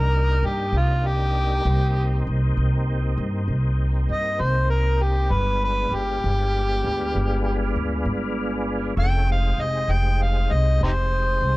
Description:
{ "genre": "slow blues", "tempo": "66 BPM (dotted quarters)", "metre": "12/8", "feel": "straight", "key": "C minor", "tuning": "A4 = 440 Hz", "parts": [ { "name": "overdriven harmonica", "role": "melody", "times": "0.0-11.6 s", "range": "Eb4 to G5", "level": "-24 LUFS", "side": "equal", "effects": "plate reverb" }, { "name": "tonewheel organ", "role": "sustained chords", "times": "0.0-11.6 s", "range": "Ab3 to Ab4", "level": "-30 LUFS", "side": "equal", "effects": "slow rotary speaker, chorus vibrato, plate reverb" }, { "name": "upright bass", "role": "bass", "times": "0.0-11.6 s", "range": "F1 to G2", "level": "-21 LUFS", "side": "equal", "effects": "none" } ], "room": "little or no reverb", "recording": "dark, warm production", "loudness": "-20 LUFS", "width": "side -20 dB against mid", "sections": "0.0-11.6 A section", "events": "harmonica solo 0.0-11.6", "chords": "0.0 Cm9; 5.3 G7b9; 9.0 Fm9" }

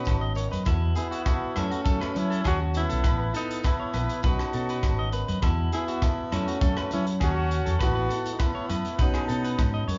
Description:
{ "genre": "highlife guitar band", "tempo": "101 BPM", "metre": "4/4", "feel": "straight", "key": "E major", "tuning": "A4 = 445 Hz", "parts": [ { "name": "clear alto saxophone", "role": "melody", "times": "0.0-9.9 s", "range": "C#4 to F#4", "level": "-34 LUFS", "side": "equal", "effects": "none" }, { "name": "warm trumpet", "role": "second line", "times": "0.0-9.9 s", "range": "A3 to D#4", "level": "-39 LUFS", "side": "equal", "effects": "none" }, { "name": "flamenco guitar", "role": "accompaniment", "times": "0.0-10.0 s", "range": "E2 to F#4", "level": "-39 LUFS", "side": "equal", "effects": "none" }, { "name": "electric guitar at the edge of break-up", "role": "arpeggios", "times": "0.0-10.0 s", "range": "E4 to D#5", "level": "-37 LUFS", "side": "equal", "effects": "tape echo" }, { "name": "maracas", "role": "percussion", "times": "0.0-10.0 s", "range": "none", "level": "-53 LUFS", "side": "equal", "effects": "none" }, { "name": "fingered electric bass", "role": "bass", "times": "0.1-10.0 s", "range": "G#1 to F#3", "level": "-30 LUFS", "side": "equal", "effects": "none" }, { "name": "tight funk drum kit", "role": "drums", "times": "0.1-10.0 s", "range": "hi-hat, kick drum, rim click", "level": "-31 LUFS", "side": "equal", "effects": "none" }, { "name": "agogo bells", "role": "percussion", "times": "0.1-9.7 s", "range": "none", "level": "-42 LUFS", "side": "equal", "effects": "none" } ], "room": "moderate large studio reverb, RT60 0.9 s", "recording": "band playing live in one room, nothing above 7.5 kHz", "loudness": "-26 LUFS", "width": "mono", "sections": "0.0-10.0 A section", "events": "none", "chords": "0.0 Badd9; 0.7 Esus2; 1.8 F#m; 3.0 Asus2; 4.2 Badd9; 5.4 Esus2; 6.6 F#m; 7.8 Asus2; 9.0 Badd9" }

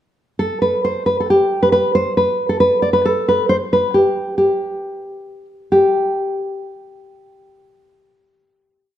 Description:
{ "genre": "medieval", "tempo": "136 BPM", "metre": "3/4", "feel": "straight", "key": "G major", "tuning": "A4 = 440 Hz", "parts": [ { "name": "nylon-string guitar", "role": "solo", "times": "0.4-9.0 s", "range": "G4 to D5", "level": "-15 LUFS", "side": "equal", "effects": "none" } ], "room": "wet recital hall reverb, RT60 1.5 s", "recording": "none", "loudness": "-14 LUFS", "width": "side -11 dB against mid", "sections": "0.4-5.7 A section; 5.7-8.3 final note", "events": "none", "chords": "none" }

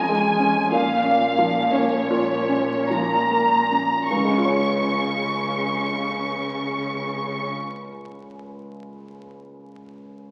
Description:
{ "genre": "cinematic, emotional film score for orchestra", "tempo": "49-64 BPM", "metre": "3/4", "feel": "rubato", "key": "Db major", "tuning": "A4 = 441 Hz", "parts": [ { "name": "rich studio violin section", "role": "melody", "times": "0.0-7.5 s", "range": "Db5 to Db6", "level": "-25 LUFS", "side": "equal", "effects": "none" }, { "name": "felt-muted upright piano", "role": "accompaniment", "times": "0.0-10.3 s", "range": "Db2 to Db5", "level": "-27 LUFS", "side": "equal", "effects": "none" }, { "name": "rich studio cello section", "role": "bass", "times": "0.0-7.5 s", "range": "F2 to Db3", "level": "-32 LUFS", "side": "equal", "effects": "none" } ], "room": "wet scoring stage reverb, RT60 1.5 s", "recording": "very old 78 rpm record, vinyl crackle", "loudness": "-22 LUFS", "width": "mono", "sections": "0.0-4.1 A section; 4.1-7.5 B section", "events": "slowing down 0.0-4.1", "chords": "0.0 Db/F; 0.7 Bbm; 4.1 Db" }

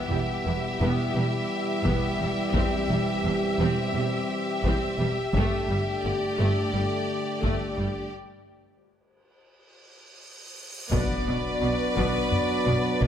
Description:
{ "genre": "cinematic, epic orchestral film score", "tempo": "86 BPM", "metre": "4/4", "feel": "straight", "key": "unclear", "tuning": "A4 = 440 Hz", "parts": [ { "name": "clear symphonic violin section", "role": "melody", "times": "0.0-13.1 s", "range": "D5 to E5", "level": "-33 LUFS", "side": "left 2 dB", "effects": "none" }, { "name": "clear symphonic violin section", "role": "second line", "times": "0.0-13.1 s", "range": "G4 to B4", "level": "-34 LUFS", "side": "left 2 dB", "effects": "none" }, { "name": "rich symphonic viola section", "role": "accompaniment", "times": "0.0-13.1 s", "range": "D3 to C4", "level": "-34 LUFS", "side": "equal", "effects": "none" }, { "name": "mellow French horn section", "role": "sustained chords", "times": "0.0-13.1 s", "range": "B3 to G4", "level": "-32 LUFS", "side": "left 3 dB", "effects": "none" }, { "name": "mellow trombone section", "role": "sustained chords", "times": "0.0-13.1 s", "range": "D3 to B3", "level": "-32 LUFS", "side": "right 3 dB", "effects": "none" }, { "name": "clear studio double bass section", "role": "bass", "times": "0.1-13.1 s", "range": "E1 to B1", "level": "-31 LUFS", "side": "right 2 dB", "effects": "none" }, { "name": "rich symphonic cello section", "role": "bass", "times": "0.1-13.1 s", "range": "E2 to B2", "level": "-30 LUFS", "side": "right 1 dB", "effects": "none" }, { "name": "taiko ensemble", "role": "drums", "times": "1.9-13.1 s", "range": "none", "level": "-30 LUFS", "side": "left 1 dB", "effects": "none" }, { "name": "cymbal swell and impact", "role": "sound effects", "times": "9.8-13.1 s", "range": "none", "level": "-39 LUFS", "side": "equal", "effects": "none" }, { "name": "clear woodwind section", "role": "sustained chords", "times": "10.9-13.1 s", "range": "B3 to D5", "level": "-33 LUFS", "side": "left 3 dB", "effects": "none" } ], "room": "moderate scoring stage reverb, RT60 1.8 s", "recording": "none", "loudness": "-23 LUFS", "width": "side -9 dB against mid", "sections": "0.0-10.9 A section; 10.9-13.1 B section", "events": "break 8.1-10.9; cymbal swell 9.8-10.9; drum fill 9.9-10.9; impact 10.9-13.1", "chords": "0.0 Em; 2.5 C/E; 5.3 Gsus2; 8.1 N.C.; 10.9 Bm" }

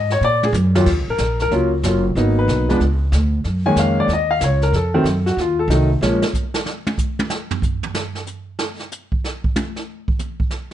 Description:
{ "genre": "jazz piano trio", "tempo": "187 BPM", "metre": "4/4", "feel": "swing 64% on 8ths", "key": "Eb minor", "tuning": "A4 = 439 Hz", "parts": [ { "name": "warm concert grand piano", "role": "melody", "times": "0.0-6.2 s", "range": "Eb2 to Ab5", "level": "-18 LUFS", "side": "left 1 dB", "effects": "plate reverb" }, { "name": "upright bass", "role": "bass", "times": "0.0-6.2 s", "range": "Gb1 to Bb2", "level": "-18 LUFS", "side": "equal", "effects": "none" }, { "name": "jazz brush drum kit", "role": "drums", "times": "0.1-10.6 s", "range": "brushed snare drum, crash cymbal, hi-hat, kick drum, snare drum, toms", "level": "-23 LUFS", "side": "right 2 dB", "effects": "none" } ], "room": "light reverb", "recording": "dark, warm production, nothing above 10.5 kHz", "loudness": "-16 LUFS", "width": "side -11 dB against mid", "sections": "0.9-10.7 A section", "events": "drum fill 0.2-0.9; grand piano solo 0.9-10.7; drum solo 6.0-10.7", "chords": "0.2 N.C.; 0.9 Ebm7 (rootless); 2.2 Abm9; 2.8 N.C.; 3.4 Gb6; 4.7 F7b9; 6.0 N.C." }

